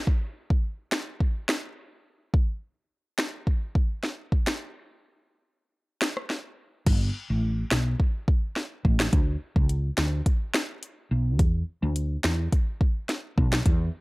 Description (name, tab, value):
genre	dancehall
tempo	106 BPM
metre	4/4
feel	straight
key	unclear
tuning	A4 = 440 Hz
part	afro-pop drum kit	drums	0.1-13.8 s	crash cymbal, finger snaps, hi-hat, kick drum, rim click, snare drum	-24 LUFS	equal	none
part	woody fretless electric bass	bass	6.9-13.9 s	G1 to E2	-25 LUFS	equal	wide subtle chorus
room	little or no reverb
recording	dark, warm production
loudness	-24 LUFS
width	side -23 dB against mid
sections	0.0-6.9 A section; 6.9-14.0 B section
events	break 4.6-6.9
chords	none